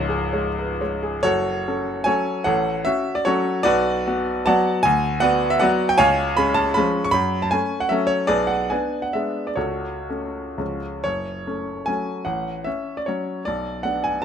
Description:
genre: classical, romantic triple-time dance for piano with dotted rhythms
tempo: 114-168 BPM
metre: 3/4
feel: rubato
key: F# minor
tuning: A4 = 441 Hz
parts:
  - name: clear grand piano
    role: solo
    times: 0.0-14.2 s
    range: C#1 to C#6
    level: -19 LUFS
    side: equal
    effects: none
room: light reverb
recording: close, detailed microphones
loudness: -19 LUFS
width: side -8 dB against mid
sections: 0.0-1.2 A section; 1.2-11.0 B section; 11.0-14.2 C section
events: none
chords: 0.0 C#5; 1.2 F#m; 2.5 F#m/A; 3.7 Bm; 4.8 Bm/D; 6.0 C#; 7.1 F#m; 8.3 G#dim/B; 9.6 F#m/C#; 10.6 C#; 11.0 F#m; 12.3 F#m/A; 13.5 Bm

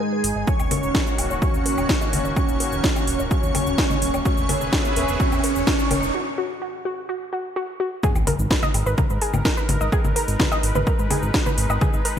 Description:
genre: melodic techno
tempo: 127 BPM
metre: 4/4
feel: straight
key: G# minor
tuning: A4 = 441 Hz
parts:
  - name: wide unison lead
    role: melody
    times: 0.0-6.1 s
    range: G#3 to C#4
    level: -26 LUFS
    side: right 1 dB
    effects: ensemble chorus, sidechain pumping, ping-pong delay
  - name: airy dreamy lead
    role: second line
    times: 0.0-6.1 s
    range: G#4 to C#5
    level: -29 LUFS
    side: equal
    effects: chorus, sidechain pumping, digital delay
  - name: warm analog pad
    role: sustained chords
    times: 0.0-12.2 s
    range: D#3 to A#5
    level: -30 LUFS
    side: equal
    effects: chorus, sidechain pumping
  - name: warbly dusty pluck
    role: arpeggios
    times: 0.0-12.1 s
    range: F#4 to D#6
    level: -29 LUFS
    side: equal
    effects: chorus, sidechain pumping, digital delay
  - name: analog drone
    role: drone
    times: 0.0-6.1 s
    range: G#2 to D#3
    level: -41 LUFS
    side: equal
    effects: none
  - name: fat analog bass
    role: bass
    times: 0.2-12.0 s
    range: D#1 to G#2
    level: -26 LUFS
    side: equal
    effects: sidechain pumping
  - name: house drum kit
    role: drums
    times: 0.2-12.1 s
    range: congas, hi-hat, shaker, snare drum, woodblock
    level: -25 LUFS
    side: left 2 dB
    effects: overdrive, gated reverb
  - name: electronic kick drum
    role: drums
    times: 0.5-11.9 s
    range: none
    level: -23 LUFS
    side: equal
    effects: overdrive
  - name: riser and impact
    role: sound effects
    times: 3.1-9.9 s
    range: none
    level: -33 LUFS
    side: right 1 dB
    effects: none
room: light reverb, digital ambience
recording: bright 1980s-style digital production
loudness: -19 LUFS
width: side -9 dB against mid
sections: 0.0-8.0 A section; 8.0-12.2 B section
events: build-up 0.0-8.0; filter sweep on synth arpeggio sound 0.0-8.0; riser 3.1-6.1; break 6.1-8.0; drop 8.0-12.2; impact 8.0-9.9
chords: 0.5 D#m7; 4.3 E; 8.0 G#madd9

